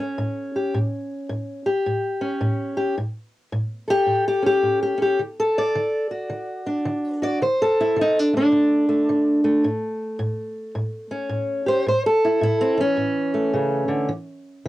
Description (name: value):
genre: acoustic country blues, solo or duo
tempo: 108 BPM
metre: 4/4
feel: swing 63% on 8ths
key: A mixolydian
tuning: A4 = 440 Hz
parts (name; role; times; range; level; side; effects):
- fingerpicked steel-string acoustic guitar; solo; 0.0-14.7 s; A2 to D5; -20 LUFS; equal; cassette tape
room: wet booth ambience, RT60 0.2 s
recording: home recording on cassette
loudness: -20 LUFS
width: side -16 dB against mid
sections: 0.0-14.7 A section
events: none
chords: 0.0 A7; 5.2 D7; 9.6 A; 14.1 N.C.